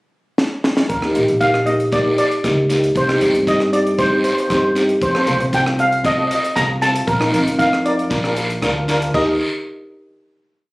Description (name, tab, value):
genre	calypso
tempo	116 BPM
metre	4/4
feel	straight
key	Eb major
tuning	A4 = 441 Hz
part	tight funk drum kit	drums	0.4-9.3 s	crash cymbal, hi-hat, kick drum, rim click, snare drum	-23 LUFS	equal	none
part	steel pan	melody	0.9-9.4 s	Bb4 to Bb5	-19 LUFS	equal	none
part	upright bass	bass	0.9-9.4 s	Bb1 to G2	-22 LUFS	equal	none
part	guiro	percussion	0.9-9.4 s	none	-27 LUFS	equal	none
part	steel pan	accompaniment	1.0-9.4 s	Bb3 to Bb4	-18 LUFS	equal	none
room	moderate small room reverb, RT60 0.5 s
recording	recorded on a phone in the room, studio reverb, compression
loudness	-15 LUFS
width	side -22 dB against mid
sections	0.0-0.9 pickup bar; 0.9-9.1 verse; 9.1-10.7 final chord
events	drum fill 0.4-0.9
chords	0.0 N.C.; 0.9 Ebmaj7; 3.0 Cm; 5.0 F; 7.1 Bbsus4; 8.1 Bb; 9.1 Eb